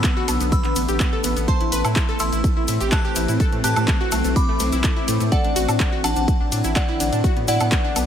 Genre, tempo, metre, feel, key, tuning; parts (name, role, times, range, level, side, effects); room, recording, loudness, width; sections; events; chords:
progressive house; 125 BPM; 4/4; straight; A dorian; A4 = 441 Hz
glassy synth bell; melody; 0.0-8.1 s; D5 to F#6; -26 LUFS; left 1 dB; chorus, sidechain pumping, ping-pong delay
shimmering ambient pad; sustained chords; 0.0-8.1 s; D3 to C4; -27 LUFS; left 1 dB; chorus, built-in reverb, sidechain pumping
analog pluck; arpeggios; 0.0-8.0 s; A3 to C5; -27 LUFS; equal; chorus, sidechain pumping, ping-pong delay
saturated sub bass; bass; 0.0-8.1 s; A1 to A2; -24 LUFS; equal; sidechain pumping
electronic kick drum; drums; 0.0-7.8 s; -20 LUFS; equal
house drum kit; drums; 0.0-8.1 s; handclaps, hi-hat, ride cymbal, woodblock; -27 LUFS; right 1 dB
cabasa; percussion; 0.0-8.1 s; -32 LUFS; left 4 dB
little or no reverb; -17 LUFS; side -9 dB against mid
0.0-8.1 A section
0.0 Bm7; 1.5 Am; 5.3 D7/A; 7.2 Bm7